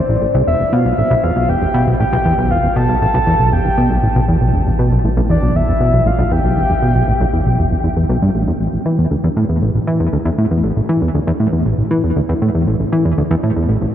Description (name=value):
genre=ambient, sequencer-driven space music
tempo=118 BPM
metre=4/4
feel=straight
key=unclear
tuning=A4 = 440 Hz
part: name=soft octave-layered synth lead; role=melody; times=0.0-8.1 s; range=C5 to A5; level=-19 LUFS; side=left 1 dB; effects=chorus, tape echo
part: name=warm sub bass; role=bass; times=0.0-8.6 s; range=A1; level=-21 LUFS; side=equal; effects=none
part: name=plucky analog bass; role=riff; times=0.1-13.9 s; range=E1 to E3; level=-14 LUFS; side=equal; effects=tape echo
room=wet huge ambient reverb, RT60 8.0 s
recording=dreamy mix soaked in reverb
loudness=-13 LUFS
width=side -10 dB against mid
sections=0.0-8.6 A section; 8.6-13.9 B section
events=none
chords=0.5 Em; 8.6 A5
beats=| 0.47 0.98 1.49 2.00 | 2.50 3.01 3.52 4.03 | 4.54 5.05 5.55 6.06 | 6.57 7.08 7.59 8.10 | 8.61 9.11 9.62 10.13 | 10.64 11.15 11.66 12.16 | 12.67 13.18 13.69